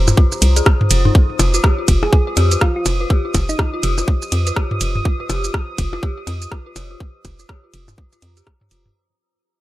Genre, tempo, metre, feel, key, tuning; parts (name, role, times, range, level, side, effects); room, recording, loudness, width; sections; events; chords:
minimal techno; 123 BPM; 4/4; swing 60% on 16ths; A4 = 440 Hz
hollow knocking FM bass; bass; 0.0-8.9 s; F1 to F2; -17 LUFS; equal; sidechain pumping
deep dark ambient pad; texture; 0.0-9.0 s; F4 to Eb6; -28 LUFS; equal; chorus, built-in reverb, sidechain pumping
booming analog drum machine; drums; 0.1-8.8 s; hi-hat, ride cymbal, rim click, shaker; -21 LUFS; right 1 dB
electronic toms and percussion blips; percussion; 0.1-8.9 s; -20 LUFS; left 1 dB; overdrive
dark detuned synth bell; riff; 0.2-8.8 s; Eb4 to C5; -26 LUFS; left 2 dB; chorus, phaser, sidechain pumping, dub echo
electronic kick drum; drums; 0.2-8.6 s; -15 LUFS; equal; overdrive
thumb-piano-like synth pluck; melody; 2.0-4.2 s; Eb4 to Ab4; -25 LUFS; right 2 dB; chorus, digital delay
little or no reverb; -14 LUFS; side -16 dB against mid
0.0-9.0 A section
drop 0.0-9.0; fade-out 1.1-9.0
0.0 F5